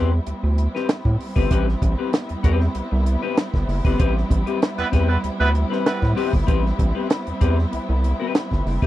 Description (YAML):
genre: funk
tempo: 96 BPM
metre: 4/4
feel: straight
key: A minor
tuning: A4 = 440 Hz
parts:
  - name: clean electric guitar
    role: accompaniment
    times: 0.0-8.9 s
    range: C4 to B4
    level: -25 LUFS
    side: left 8 dB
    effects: analog chorus
  - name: warm symphonic string section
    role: sustained chords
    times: 0.0-8.9 s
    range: G3 to E4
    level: -28 LUFS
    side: right 1 dB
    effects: none
  - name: round analog bass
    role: bass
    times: 0.0-8.9 s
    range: F#1 to A2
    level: -20 LUFS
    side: equal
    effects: none
  - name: compact cocktail drum kit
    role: drums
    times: 0.3-8.9 s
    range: hi-hat, kick drum, snare drum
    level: -21 LUFS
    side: equal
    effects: none
  - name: clear horn section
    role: second line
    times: 4.8-6.3 s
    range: G3 to B4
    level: -23 LUFS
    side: right 4 dB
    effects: none
room: little or no reverb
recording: dry, close 1970s-style studio recording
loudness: -18 LUFS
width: side -14 dB against mid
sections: 0.0-8.9 A section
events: band accent 4.0-6.5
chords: 0.0 Am9